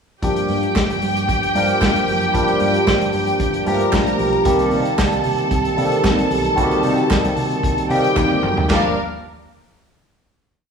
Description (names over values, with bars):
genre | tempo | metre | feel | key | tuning
disco | 113 BPM | 4/4 | straight | G minor | A4 = 440 Hz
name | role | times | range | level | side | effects
clear studio string section | second line | 0.2-8.9 s | D4 to Bb5 | -21 LUFS | equal | none
barky tine electric piano | accompaniment | 0.2-8.9 s | D3 to Bb4 | -19 LUFS | left 1 dB | phaser
mellow French horn section | sustained chords | 0.2-8.9 s | Eb3 to G4 | -26 LUFS | right 8 dB | none
fingered electric bass | bass | 0.2-8.9 s | F1 to C3 | -26 LUFS | right 1 dB | none
vintage drum kit | drums | 0.2-8.8 s | hi-hat, kick drum, ride cymbal, snare drum, toms | -22 LUFS | equal | none
group handclap | percussion | 0.8-8.9 s | none | -30 LUFS | right 4 dB | none
room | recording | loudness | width
wet large studio reverb, RT60 1.2 s | band playing live in one room, studio reverb | -15 LUFS | side -6 dB against mid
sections
0.2-8.7 groove; 8.7-10.7 final chord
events
drum fill 8.2-8.7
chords
0.2 Gm7; 4.5 Cm7; 8.7 Gm7